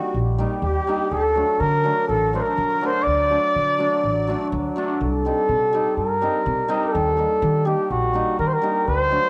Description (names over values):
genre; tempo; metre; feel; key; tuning
klezmer; 124 BPM; 4/4; straight; unclear; A4 = 435 Hz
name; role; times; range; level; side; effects
mellow cornet; melody; 0.0-9.3 s; F#4 to D5; -23 LUFS; equal; cassette tape, tape echo
musette accordion; second line; 0.0-4.5 s; F#4 to D5; -36 LUFS; equal; cassette tape
hammered dulcimer; accompaniment; 0.0-9.3 s; F#3 to Eb4; -28 LUFS; equal; cassette tape
upright bass; bass; 0.1-9.2 s; A1 to Eb3; -28 LUFS; equal; none
room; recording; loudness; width
moderate spring reverb, RT60 1.8 s, small room ambience; home recording on cassette; -21 LUFS; mono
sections
0.0-5.0 A section; 5.0-9.3 A section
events
none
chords
0.0 Eb; 1.1 D; 5.0 Cm; 6.9 Eb